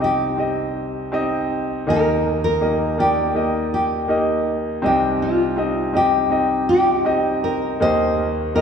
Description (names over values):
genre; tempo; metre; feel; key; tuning
pop; 81 BPM; 4/4; straight; C minor; A4 = 440 Hz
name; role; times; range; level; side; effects
nylon-string guitar; melody; 0.0-8.6 s; F4 to C5; -20 LUFS; left 1 dB; none
clear concert grand piano; accompaniment; 0.0-8.6 s; C2 to Eb5; -20 LUFS; equal; none
room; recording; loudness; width
wet concert hall reverb, RT60 2.1 s; recorded in a church or concert hall; -17 LUFS; side -7 dB against mid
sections
0.0-8.6 A section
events
none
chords
0.0 Cm; 1.9 Eb; 4.8 Cm; 7.8 Eb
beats
0.39 1.13 | 1.88 2.62 3.36 4.11 | 4.84 5.58 6.32 7.06 | 7.81 8.56